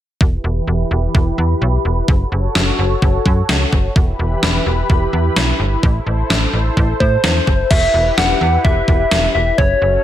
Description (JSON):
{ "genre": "synth-pop", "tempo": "128 BPM", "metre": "4/4", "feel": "straight", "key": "E minor", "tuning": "A4 = 440 Hz", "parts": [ { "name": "lush unison pad", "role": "sustained chords", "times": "0.2-10.0 s", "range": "E3 to B5", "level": "-22 LUFS", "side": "left 1 dB", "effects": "chorus, phaser, low-pass filter" }, { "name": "slap-like FM bass", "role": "bass", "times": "0.2-10.0 s", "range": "E1 to A2", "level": "-17 LUFS", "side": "equal", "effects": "none" }, { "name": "gated 80s digital drum machine", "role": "drums", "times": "0.2-9.7 s", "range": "crash cymbal, kick drum, snare drum", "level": "-16 LUFS", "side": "equal", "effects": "gated reverb, gated reverb snare" }, { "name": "soft struck synth lead", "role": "melody", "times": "7.0-10.0 s", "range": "C5 to F#5", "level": "-16 LUFS", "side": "left 1 dB", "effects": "chorus, analog delay" } ], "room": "little or no reverb", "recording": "echo-heavy mix", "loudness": "-13 LUFS", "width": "side -12 dB against mid", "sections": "0.2-7.7 A section; 7.7-10.0 B section", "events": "filter sweep on analog synth pad 0.2-7.7", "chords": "0.2 Em; 2.1 F#m; 4.0 Em; 5.8 Am; 7.7 Em" }